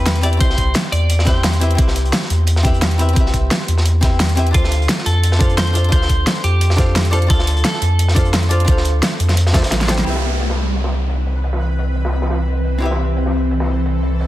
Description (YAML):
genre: liquid drum and bass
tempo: 174 BPM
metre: 4/4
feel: swing 54% on 16ths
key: C major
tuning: A4 = 439 Hz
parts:
  - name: clean electric guitar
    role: melody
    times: 0.0-1.9, 4.5-8.3 s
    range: F4 to D5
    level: -25 LUFS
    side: right 1 dB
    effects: tape echo
  - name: archtop guitar, miked and amplified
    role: accompaniment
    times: 0.0-14.3 s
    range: C4 to G5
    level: -24 LUFS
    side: left 1 dB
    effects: tape echo
  - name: warm sub bass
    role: bass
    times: 0.0-14.3 s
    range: A1 to F2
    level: -16 LUFS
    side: equal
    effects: none
  - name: crunchy breakbeat drum kit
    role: drums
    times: 0.1-14.3 s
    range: hi-hat, snare drum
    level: -26 LUFS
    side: equal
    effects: high-pass filter on hats, low-pass filter on hats, high-pass filter on snare, low-pass filter on snare, high-pass filter on room, low-pass filter on room
  - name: pop drum kit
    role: drums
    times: 0.1-14.3 s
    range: crash cymbal, hi-hat, snare drum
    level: -21 LUFS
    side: equal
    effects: overdrive, low-pass filter on hats, low-pass filter on snare, low-pass filter on cymbals, low-pass filter on room
  - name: electronic kick drum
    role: drums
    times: 0.4-9.6 s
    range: none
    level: -16 LUFS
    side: equal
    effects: overdrive
  - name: shimmering ambient pad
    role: sustained chords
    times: 11.2-14.3 s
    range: E3 to B4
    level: -23 LUFS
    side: equal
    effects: chorus, built-in reverb
  - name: downlifter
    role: sound effects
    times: 10.1-12.8 s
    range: none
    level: -27 LUFS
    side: equal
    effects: none
room: light reverb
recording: dense, heavily limited modern master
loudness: -14 LUFS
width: side -15 dB against mid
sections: 0.0-10.1 A section; 10.1-14.3 B section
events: drum fill 9.5-10.1; band accent 10.0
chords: 0.0 Cmaj7; 4.5 Dm7; 10.1 Cmaj7